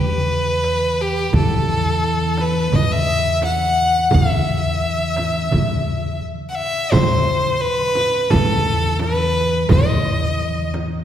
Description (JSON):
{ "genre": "Arabic maqam ensemble", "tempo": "86 BPM", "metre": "4/4", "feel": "straight", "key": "unclear", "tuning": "A4 = 440 Hz", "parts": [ { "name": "clear violin", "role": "melody", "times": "0.0-10.7 s", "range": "G4 to F#5", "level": "-19 LUFS", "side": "left 1 dB", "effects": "none" }, { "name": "upright bass", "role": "bass", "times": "0.0-11.0 s", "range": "E2", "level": "-21 LUFS", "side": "equal", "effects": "none" }, { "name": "darbuka", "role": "percussion", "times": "0.6-10.9 s", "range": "none", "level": "-25 LUFS", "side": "right 2 dB", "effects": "none" }, { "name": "frame drum", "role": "percussion", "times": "1.3-10.9 s", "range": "none", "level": "-24 LUFS", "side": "right 1 dB", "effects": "none" } ], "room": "wet concert hall reverb, RT60 2.0 s", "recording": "heard from further back in the room", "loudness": "-16 LUFS", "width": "side -10 dB against mid", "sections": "0.0-6.9 A section; 6.9-11.0 B section", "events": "break 6.2-6.9", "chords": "none", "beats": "0.64 | 1.34 2.04 2.73 3.43 | 4.13 4.83 5.52 6.22 | 6.92 7.62 8.31 9.01 | 9.71 10.40" }